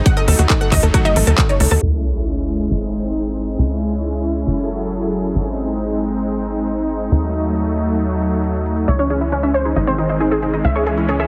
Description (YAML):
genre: uplifting trance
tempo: 136 BPM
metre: 4/4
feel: straight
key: C# harmonic minor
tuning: A4 = 444 Hz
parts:
  - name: unison pluck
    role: melody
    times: 0.0-1.8, 8.9-11.3 s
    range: C#4 to F#5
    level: -23 LUFS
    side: equal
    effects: subtle chorus, sidechain pumping, tape echo
  - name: supersaw pad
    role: sustained chords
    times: 0.0-11.3 s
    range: D#3 to A4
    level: -23 LUFS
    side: equal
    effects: sidechain pumping
  - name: analog pluck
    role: arpeggios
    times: 0.0-1.7, 8.9-11.3 s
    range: B#3 to A5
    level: -26 LUFS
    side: equal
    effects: chorus, sidechain pumping, digital delay
  - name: big-room dance drum kit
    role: drums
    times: 0.1-11.3 s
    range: handclaps, hi-hat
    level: -24 LUFS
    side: equal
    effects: none
  - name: electronic kick drum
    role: drums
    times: 0.1-1.5 s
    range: none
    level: -18 LUFS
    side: equal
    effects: none
  - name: tight sequencer bass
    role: bass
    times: 0.3-11.3 s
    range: F#1 to D#2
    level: -23 LUFS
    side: equal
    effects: sidechain pumping
  - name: sub drop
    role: sound effects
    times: 1.8-3.6 s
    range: none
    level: -25 LUFS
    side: equal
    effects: none
room: light reverb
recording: heavily compressed radio sound, low-pass filter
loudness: -18 LUFS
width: mono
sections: 0.0-1.8 A section; 1.8-11.3 B section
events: impact 1.8-3.6; filter sweep 1.8-11.3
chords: 0.1 D#dim; 1.8 C#m; 2.7 G#; 3.6 C#m; 4.5 F#m7; 5.4 G#; 7.1 D#dim; 8.9 C#m; 9.8 G#; 10.6 C#m